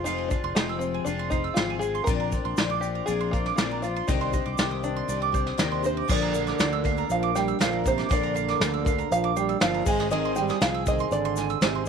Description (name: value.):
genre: indie folk with a building arrangement.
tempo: 119 BPM.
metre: 4/4.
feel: straight.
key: unclear.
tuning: A4 = 440 Hz.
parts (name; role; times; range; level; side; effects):
open-back banjo; melody; 0.0-11.9 s; Bb3 to Ab5; -30 LUFS; equal; none.
picked twelve-string acoustic guitar; accompaniment; 0.0-11.9 s; F2 to Bb4; -31 LUFS; left 14 dB; none.
bowl-back mandolin; arpeggios; 0.0-11.9 s; C5 to Fb6; -31 LUFS; right 13 dB; none.
fingered electric bass; bass; 0.0-11.9 s; F1 to Eb2; -32 LUFS; equal; none.
vintage brush drum kit; drums; 0.1-11.7 s; crash cymbal, hi-hat, kick drum, snare drum; -27 LUFS; equal; none.
tube shaker; percussion; 0.1-11.9 s; none; -43 LUFS; left 18 dB; none.
warm French horn; second line; 5.8-11.9 s; C3 to Ab3; -29 LUFS; right 12 dB; none.
room: light reverb.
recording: 1960s-style stereo with parts hard left and right.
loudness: -23 LUFS.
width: side -6 dB against mid.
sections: 0.0-6.1 A section; 6.1-11.9 B section.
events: none.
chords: 0.0 Fm; 2.1 Bbadd9; 4.1 Cmadd9; 6.1 Bb; 9.9 Ab.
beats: | 0.06 0.56 1.06 1.57 | 2.07 2.57 3.08 3.58 | 4.08 4.58 5.09 5.59 | 6.09 6.59 7.10 7.60 | 8.10 8.60 9.11 9.61 | 10.11 10.61 11.12 11.62.